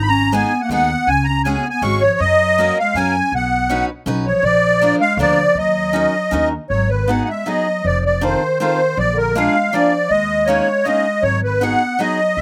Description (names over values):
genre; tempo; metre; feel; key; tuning
musette waltz; 160 BPM; 3/4; straight; Eb minor; A4 = 439 Hz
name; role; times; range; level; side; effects
musette accordion; melody; 0.0-12.4 s; A#4 to Db6; -18 LUFS; equal; none
mellow clarinet; second line; 0.0-12.4 s; D3 to Gb4; -26 LUFS; equal; none
upright bass; bass; 0.0-12.4 s; F1 to Gb2; -25 LUFS; equal; none
picked steel-string acoustic guitar; accompaniment; 0.3-12.2 s; Ab3 to B4; -24 LUFS; equal; none
room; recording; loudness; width
little or no reverb; recorded outdoors, with no room sound; -17 LUFS; mono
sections
0.0-6.7 A section; 6.7-12.4 B section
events
none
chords
0.0 Abm; 1.1 Dbsus4; 2.2 Gb; 3.3 Badd9; 4.4 Bb; 5.6 Ebm7; 6.7 G#m7; 7.8 F7; 9.0 A#7; 10.1 D#7sus4; 11.2 G#m7